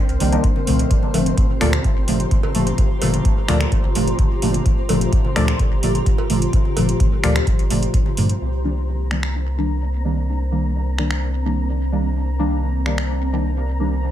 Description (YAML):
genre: dub techno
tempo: 128 BPM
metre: 4/4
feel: straight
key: C minor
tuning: A4 = 440 Hz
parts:
  - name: granular cloud pad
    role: sustained chords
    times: 0.0-14.1 s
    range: C4 to Bb5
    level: -28 LUFS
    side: equal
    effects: built-in reverb, sidechain pumping
  - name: flickering grainy texture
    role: texture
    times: 0.0-14.1 s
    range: Bb3 to Bb5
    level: -32 LUFS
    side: left 1 dB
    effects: built-in reverb, sidechain pumping
  - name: soft dub sub bass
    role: bass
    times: 0.1-14.1 s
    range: G1 to G2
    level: -21 LUFS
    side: equal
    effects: tube saturation, sidechain pumping
  - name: booming analog drum machine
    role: drums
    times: 0.1-13.1 s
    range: finger snaps, hi-hat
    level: -27 LUFS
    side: equal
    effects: none
  - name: deep mellow chord stab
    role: stabs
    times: 0.2-13.9 s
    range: Bb2 to D4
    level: -22 LUFS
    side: equal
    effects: chorus, phaser, sidechain pumping, dub echo
  - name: congas and cowbell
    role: percussion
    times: 0.2-8.2 s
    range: none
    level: -31 LUFS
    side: right 2 dB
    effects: overdrive, sidechain pumping on perc, dub echo
  - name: warbly dusty pluck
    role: riff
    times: 0.3-7.3 s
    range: F4 to G5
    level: -29 LUFS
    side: left 3 dB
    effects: chorus, vintage 12-bit sampler grit, sidechain pumping, dub echo
  - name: electronic kick drum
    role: drums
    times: 0.4-8.0 s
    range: none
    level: -18 LUFS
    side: equal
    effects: none
room: digital ambience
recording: none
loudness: -17 LUFS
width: side -11 dB against mid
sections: 0.0-8.4 A section; 8.4-14.1 B section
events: filter sweep on ambient pad 8.4-14.1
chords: 0.0 Cm7; 0.9 Gm7; 8.4 Cm7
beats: 0.44 | 0.91 1.38 1.84 2.31 | 2.78 3.25 3.72 4.19 | 4.66 5.13 5.59 6.06 | 6.53 7.00 7.47 7.94 | 8.41 8.88 9.34 9.81 | 10.28 10.75 11.22 11.69 | 12.16 12.63 13.09 13.56 | 14.03